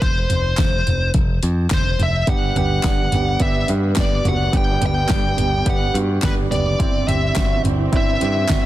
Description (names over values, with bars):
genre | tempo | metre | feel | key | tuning
piano-driven pop | 106 BPM | 4/4 | straight | G major | A4 = 439 Hz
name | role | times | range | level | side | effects
bluesy overdriven lead guitar | melody | 0.0-8.7 s | B4 to G5 | -23 LUFS | left 1 dB | distortion
modern bright picked electric bass | bass | 0.0-8.7 s | F1 to G2 | -21 LUFS | equal | none
deep house drum kit | drums | 0.0-8.6 s | handclaps, hi-hat, kick drum, snare drum, toms | -20 LUFS | equal | none
dark baby grand piano | accompaniment | 2.3-8.7 s | G2 to G4 | -24 LUFS | right 5 dB | none
warm studio string section | sustained chords | 2.3-8.7 s | D3 to C4 | -31 LUFS | equal | none
room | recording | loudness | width
little or no reverb | dense, heavily limited modern master | -16 LUFS | side -14 dB against mid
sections
0.0-8.7 A section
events
none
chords
0.0 F5; 2.3 G; 6.8 Cadd9/G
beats
| 0.02 0.58 1.15 1.71 | 2.28 2.84 3.41 3.97 | 4.54 5.10 5.67 6.23 | 6.80 7.36 7.93 8.49